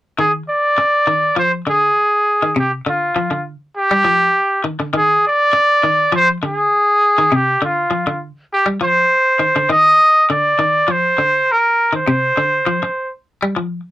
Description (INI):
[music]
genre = afrobeat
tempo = 101 BPM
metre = 4/4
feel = straight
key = F dorian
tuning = A4 = 440 Hz
[part]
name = clear trumpet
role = melody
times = 0.2-13.1 s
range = F4 to Eb5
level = -13 LUFS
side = equal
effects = none
[part]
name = clean electric guitar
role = arpeggios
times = 0.2-13.8 s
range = C3 to G3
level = -20 LUFS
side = left 2 dB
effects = none
[sound]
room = moderate booth ambience, RT60 0.2 s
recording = rough rehearsal-room recording, warm saturation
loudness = -13 LUFS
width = side -15 dB against mid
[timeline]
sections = 0.2-13.9 A section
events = none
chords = 0.2 Fm7; 2.6 Csus4; 5.0 Fm7; 7.3 Csus4; 9.7 F5; 12.1 Csus2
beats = | 0.19 0.78 1.38 1.98 | 2.57 3.17 3.76 4.36 | 4.95 5.54 6.14 6.73 | 7.33 7.92 8.51 9.11 | 9.70 10.29 10.89 11.48 | 12.07 12.67 13.26